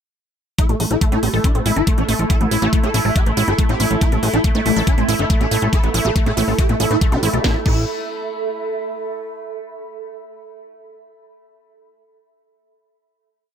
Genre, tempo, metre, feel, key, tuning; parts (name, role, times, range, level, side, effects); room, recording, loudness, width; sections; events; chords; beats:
psychedelic trance; 140 BPM; 4/4; straight; A4 = 440 Hz
swarming rave lead; melody; 0.6-7.8 s; A3 to A4; -22 LUFS; equal; chorus, phaser, sidechain pumping, ping-pong delay
overtone-sweeping drone; sustained chords; 0.9-7.5 s; A3 to E4; -26 LUFS; right 2 dB; chorus, built-in reverb, phaser, sidechain pumping
wide unison pluck; riff; 0.6-7.9 s; G3 to A4; -24 LUFS; right 1 dB; auto-pan, sidechain pumping, ping-pong delay
drum and bass drum kit; drums; 0.6-7.7 s; crash cymbal, hi-hat, snare drum; -27 LUFS; left 1 dB
electronic kick drum; drums; 0.6-7.7 s; -17 LUFS; equal
ethereal airy pad; texture; 2.6-9.1 s; A4 to B5; -28 LUFS; right 5 dB; ensemble chorus, built-in reverb, sidechain pumping
fat analog bass; bass; 0.7-7.9 s; G1 to A2; -20 LUFS; equal
zap; sound effects; 7.1-7.2 s; -30 LUFS; equal
little or no reverb; -15 LUFS; side -8 dB against mid
0.6-7.4 groove; 7.4-9.2 final chord
fade-in on ambient pad 0.6-7.4
0.6 A5
| 0.58 1.01 1.44 1.87 | 2.30 2.73 3.16 3.58 | 4.01 4.44 4.87 5.30 | 5.73 6.16 6.58 7.01 | 7.44 7.87 8.30 8.73